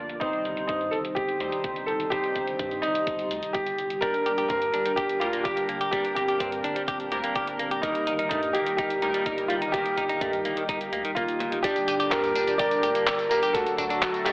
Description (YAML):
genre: italo disco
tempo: 126 BPM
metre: 4/4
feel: straight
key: G minor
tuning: A4 = 440 Hz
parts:
  - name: warm analog pad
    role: sustained chords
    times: 0.0-14.3 s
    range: Bb2 to Bb4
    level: -34 LUFS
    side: equal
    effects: chorus, shimmer reverb
  - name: chorused polysynth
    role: stabs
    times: 0.0-10.9 s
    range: G2 to D5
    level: -33 LUFS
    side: equal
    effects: digital delay, shimmer reverb
  - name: round analog bass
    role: bass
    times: 0.0-14.3 s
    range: D1 to G2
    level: -45 LUFS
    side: equal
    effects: none
  - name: detuned 8-bit digital drum machine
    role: drums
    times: 0.1-14.3 s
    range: handclaps, hi-hat, tambourine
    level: -33 LUFS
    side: equal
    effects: low-pass filter on hats, low-pass filter on perc, low-pass filter on snare, low-pass filter on room
  - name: clear concert grand piano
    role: melody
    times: 0.2-14.3 s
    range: Bb3 to D5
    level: -26 LUFS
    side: equal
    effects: digital delay, shimmer reverb
  - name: electronic kick drum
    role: drums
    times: 0.2-14.1 s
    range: none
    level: -34 LUFS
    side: equal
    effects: none
  - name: direct-recorded clean electric guitar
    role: arpeggios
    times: 4.0-14.3 s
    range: Bb2 to G4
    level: -30 LUFS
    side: equal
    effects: digital delay, shimmer reverb
room: moderate lush hall reverb, RT60 2.5 s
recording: telephone sound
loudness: -24 LUFS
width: side -25 dB against mid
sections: 0.0-11.6 A section; 11.6-14.3 B section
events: filter sweep on analog synth pad 0.0-11.6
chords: 0.2 Cm/G; 4.0 Gm; 7.8 Eb/G; 11.6 Gm; 13.5 D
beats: | 0.21 0.69 1.17 1.64 | 2.12 2.59 3.07 3.55 | 4.02 4.50 4.97 5.45 | 5.93 6.40 6.88 7.36 | 7.83 8.31 8.78 9.26 | 9.74 10.21 10.69 11.16 | 11.64 12.12 12.59 13.07 | 13.55 14.02